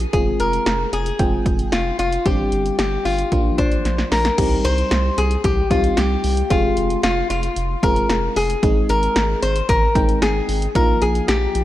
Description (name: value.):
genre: synth-pop.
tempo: 113 BPM.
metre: 4/4.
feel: straight.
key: C minor.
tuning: A4 = 441 Hz.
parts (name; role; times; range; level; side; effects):
FM electric piano; accompaniment; 0.0-11.6 s; F3 to G5; -24 LUFS; right 1 dB; chorus.
round analog bass; bass; 0.0-11.6 s; F1 to C2; -23 LUFS; equal; none.
punchy analog drum machine; drums; 0.0-11.6 s; crash cymbal, hi-hat, kick drum, snare drum; -22 LUFS; equal; none.
lap resonator guitar; melody; 0.1-11.6 s; D4 to C5; -21 LUFS; left 3 dB; none.
room: light reverb.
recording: dark, warm production.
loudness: -16 LUFS.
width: side -14 dB against mid.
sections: 0.0-4.4 A section; 4.4-11.6 B section.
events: drum fill 3.9-4.4.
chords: 0.1 Fm; 2.3 Gsus4; 3.3 Bb; 4.4 Cm; 6.5 Fm; 8.6 Abadd9; 10.8 Ebsus2/Bb.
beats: | 0.13 0.66 1.20 1.73 | 2.26 2.79 3.32 3.85 | 4.38 4.91 5.44 5.97 | 6.50 7.04 7.57 8.10 | 8.63 9.16 9.69 10.22 | 10.75 11.28.